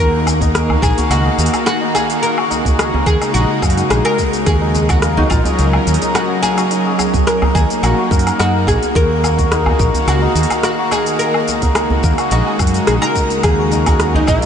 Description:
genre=organic downtempo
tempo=107 BPM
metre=4/4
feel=swing 53% on 16ths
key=Eb minor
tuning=A4 = 440 Hz
part: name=oud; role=melody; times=0.0-14.5 s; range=Eb4 to Bb4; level=-18 LUFS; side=equal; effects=tape echo
part: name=bowed-like drone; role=sustained chords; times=0.0-14.5 s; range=Db3 to F5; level=-20 LUFS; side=equal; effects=built-in reverb, sidechain pumping
part: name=santur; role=arpeggios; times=0.0-14.5 s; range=Bb3 to Bb4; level=-21 LUFS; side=left 2 dB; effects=tape echo
part: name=mellow fretless electric bass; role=bass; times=0.0-14.4 s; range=Bb1 to Gb2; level=-16 LUFS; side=equal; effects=none
part: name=organic electronic drum kit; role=drums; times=0.3-14.5 s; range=hi-hat, rim click, shaker, woodblock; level=-22 LUFS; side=left 1 dB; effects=none
part: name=djembe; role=percussion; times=0.3-14.5 s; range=none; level=-22 LUFS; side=right 1 dB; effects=none
part: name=electronic kick drum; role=drums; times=0.4-14.4 s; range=none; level=-17 LUFS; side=equal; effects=none
room=wet huge ambient reverb, RT60 7.1 s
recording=dreamy mix soaked in reverb, nothing above 10.3 kHz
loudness=-12 LUFS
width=side -8 dB against mid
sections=0.0-14.5 A section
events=none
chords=0.0 Ebm; 2.2 Dbsus24; 6.7 Ebmadd11/Bb; 9.0 Ebm; 11.2 Dbsus24/Eb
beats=0.54 1.10 1.66 | 2.22 2.79 3.35 3.91 | 4.47 5.03 5.59 6.15 | 6.71 7.27 7.83 8.39 | 8.95 9.51 10.07 10.63 | 11.20 11.76 12.32 12.88 | 13.44 14.00

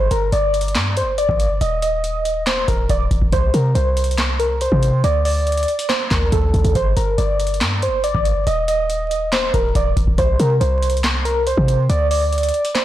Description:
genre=hip hop, trap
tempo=140 BPM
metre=4/4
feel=half-time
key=G minor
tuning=A4 = 440 Hz
part: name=soft electric-piano-like synth keys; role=melody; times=0.0-12.8 s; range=A4 to Eb5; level=-20 LUFS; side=right 1 dB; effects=chorus, phaser, low-pass filter, digital delay
part: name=clean 808-style bass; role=bass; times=0.0-12.5 s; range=Eb1 to C3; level=-19 LUFS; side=equal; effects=none
part: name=booming analog drum machine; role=drums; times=0.1-12.8 s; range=handclaps, hi-hat, kick drum, snare drum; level=-22 LUFS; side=equal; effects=none
room=little or no reverb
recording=blown-out, overdriven recording, vinyl crackle, overdrive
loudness=-16 LUFS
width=side -13 dB against mid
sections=0.0-12.8 A section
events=none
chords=0.0 G5; 1.6 N.C.; 3.3 Bbsus2/C; 5.0 D5; 6.8 G5; 8.5 N.C.; 10.2 Bbsus2/C; 11.9 D5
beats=0.33 0.75 1.18 | 1.61 2.04 2.47 2.90 | 3.33 3.75 4.18 4.61 | 5.04 5.47 5.90 6.33 | 6.75 7.18 7.61 8.04 | 8.47 8.90 9.32 9.75 | 10.18 10.61 11.04 11.47 | 11.90 12.32 12.75

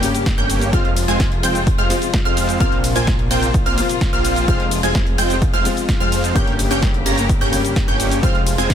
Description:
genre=EDM, festival progressive house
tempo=128 BPM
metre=4/4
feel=straight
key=F minor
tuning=A4 = 440 Hz
part: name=dark grand piano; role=accompaniment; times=0.0-8.7 s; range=G2 to G4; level=-25 LUFS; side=left 4 dB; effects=sidechain pumping, tape echo
part: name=dark symphonic string section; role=sustained chords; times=0.0-8.7 s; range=C3 to G4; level=-27 LUFS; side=left 3 dB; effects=sidechain pumping
part: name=wide unison pluck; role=arpeggios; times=0.0-8.7 s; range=F6 to Bb6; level=-25 LUFS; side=right 2 dB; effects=wide subtle chorus, sidechain pumping, tape echo
part: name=supersaw stab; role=riff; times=0.0-8.7 s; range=Ab3 to Bb5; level=-22 LUFS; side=right 1 dB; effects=sidechain pumping, tape echo
part: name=wide detuned saw bass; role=bass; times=0.0-8.7 s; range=F1 to F2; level=-23 LUFS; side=equal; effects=chorus, sidechain pumping
part: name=house drum kit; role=drums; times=0.0-8.7 s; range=hi-hat, ride cymbal, shaker, snare drum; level=-25 LUFS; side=left 1 dB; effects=none
part: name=electronic kick drum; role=drums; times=0.3-8.7 s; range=none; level=-19 LUFS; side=equal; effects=none
room=little or no reverb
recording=dense, heavily limited modern master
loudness=-15 LUFS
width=side -9 dB against mid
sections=0.0-8.7 A section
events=none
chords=0.0 Gdim; 0.7 Fm; 2.6 Bbsus2; 4.5 Fm; 6.4 Gdim; 8.2 Fm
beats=0.26 | 0.73 1.20 1.67 2.14 | 2.61 3.08 3.54 4.01 | 4.48 4.95 5.42 5.89 | 6.36 6.83 7.29 7.76 | 8.23 8.70

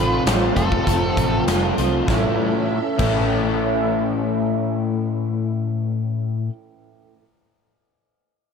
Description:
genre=rock, shoegaze and dream pop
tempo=99 BPM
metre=4/4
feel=straight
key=unclear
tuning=A4 = 444 Hz
part: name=octave-fuzz lead guitar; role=melody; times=0.0-1.4 s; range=A4 to B4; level=-26 LUFS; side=right 2 dB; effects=distortion, analog delay
part: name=soft string machine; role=sustained chords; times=0.0-5.3 s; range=C#4 to A5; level=-29 LUFS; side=right 1 dB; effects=ensemble chorus
part: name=crunchy overdriven guitar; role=riff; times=0.0-6.5 s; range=F2 to A4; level=-22 LUFS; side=left 8 dB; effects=ensemble chorus
part: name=electric guitar through a small old amp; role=riff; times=0.0-6.5 s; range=F2 to F4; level=-25 LUFS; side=right 12 dB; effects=reverse reverb
part: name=vintage muted fingered electric bass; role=bass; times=0.0-6.0 s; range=F1 to C2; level=-25 LUFS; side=equal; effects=none
part: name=huge arena drum kit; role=drums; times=0.3-3.2 s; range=crash cymbal, hi-hat, kick drum, snare drum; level=-24 LUFS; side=equal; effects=none
room=light reverb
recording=none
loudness=-18 LUFS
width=side -6 dB against mid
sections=0.0-2.1 A section; 2.1-4.5 B section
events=none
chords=0.0 F; 2.1 A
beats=0.26 0.86 1.47 | 2.07 2.68 3.29 3.90

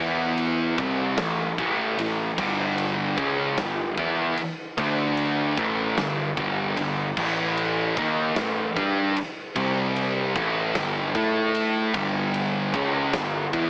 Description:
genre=quiet-loud alternative rock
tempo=50 BPM (dotted quarters)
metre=6/8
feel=straight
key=unclear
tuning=A4 = 441 Hz
part: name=thick fuzz guitar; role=riff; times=0.0-13.7 s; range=G2 to A4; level=-27 LUFS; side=equal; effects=distortion
part: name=fuzz picked electric bass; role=bass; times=0.0-13.7 s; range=G1 to A2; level=-31 LUFS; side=equal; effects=overdrive
part: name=huge arena drum kit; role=drums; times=0.4-13.7 s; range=crash cymbal, kick drum, ride cymbal, snare drum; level=-33 LUFS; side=equal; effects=none
room=moderate large studio reverb, RT60 0.9 s, studio reverb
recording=AM radio sound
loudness=-25 LUFS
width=mono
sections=0.0-13.7 A section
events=none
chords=0.0 E5; 0.8 A5; 2.4 G5; 4.8 D5; 5.6 G5; 7.2 A5; 9.6 C5; 10.4 A5; 11.9 G5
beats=1.19 | 2.38 3.58 | 4.78 5.97 | 7.17 8.36 | 9.56 10.75 | 11.94 13.14

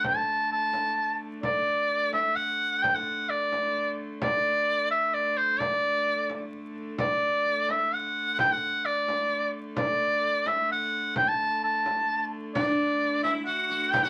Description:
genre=medieval dance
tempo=130 BPM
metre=3/4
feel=straight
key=D major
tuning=A4 = 439 Hz
part: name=bright shawm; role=melody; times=0.0-14.1 s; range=C5 to A5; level=-27 LUFS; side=equal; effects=none
part: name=warm hurdy-gurdy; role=drone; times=0.0-14.1 s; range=D3 to A3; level=-41 LUFS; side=equal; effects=none
part: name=frame drum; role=percussion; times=0.0-14.1 s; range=none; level=-38 LUFS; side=equal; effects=none
part: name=sitar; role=second line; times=12.6-14.1 s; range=D4 to G4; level=-32 LUFS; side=equal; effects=none
room=moderate small room reverb, RT60 0.5 s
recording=vinyl crackle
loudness=-27 LUFS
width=mono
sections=0.0-7.0 A section; 7.0-14.1 A section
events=none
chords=none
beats=| 0.04 0.51 0.97 | 1.43 1.90 2.36 | 2.83 3.29 3.75 | 4.22 4.68 5.14 | 5.61 6.07 6.53 | 7.00 7.46 7.92 | 8.38 8.85 9.31 | 9.77 10.23 10.70 | 11.16 11.62 12.08 | 12.54 13.01 13.47 | 13.93

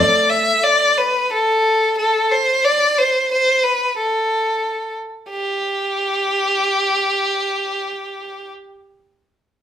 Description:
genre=pop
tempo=90 BPM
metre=4/4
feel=swing 60% on 16ths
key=G major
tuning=A4 = 442 Hz
part: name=rich violin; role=melody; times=0.0-8.5 s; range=G4 to E5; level=-16 LUFS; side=equal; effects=none
part: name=picked steel-string acoustic guitar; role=accompaniment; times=0.0-0.5 s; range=A3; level=-23 LUFS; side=equal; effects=none
room=wet studio reverb, RT60 0.8 s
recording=band playing live in one room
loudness=-15 LUFS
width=side -10 dB against mid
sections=0.0-5.3 A section; 5.3-8.0 B section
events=none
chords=none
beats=0.61 1.28 1.95 | 2.62 3.29 3.96 4.63 | 5.30 5.97 6.64 7.31

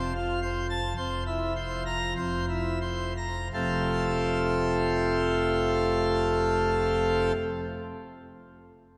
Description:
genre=classical, organ toccata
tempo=82-114 BPM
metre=4/4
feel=straight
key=F major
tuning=A4 = 440 Hz
part: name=pipe organ, plenum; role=solo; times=0.0-7.3 s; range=F1 to Bb5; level=-28 LUFS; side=equal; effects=none
room=wet church reverb, RT60 3.7 s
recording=none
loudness=-28 LUFS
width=mono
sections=0.0-3.5 A section; 3.5-9.0 B section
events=slowing down 0.0-3.5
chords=0.0 F; 1.0 C7/F; 3.5 F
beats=0.42 | 0.98 1.56 2.17 2.82 | 3.53 4.26 4.98 5.71 | 6.44 7.16

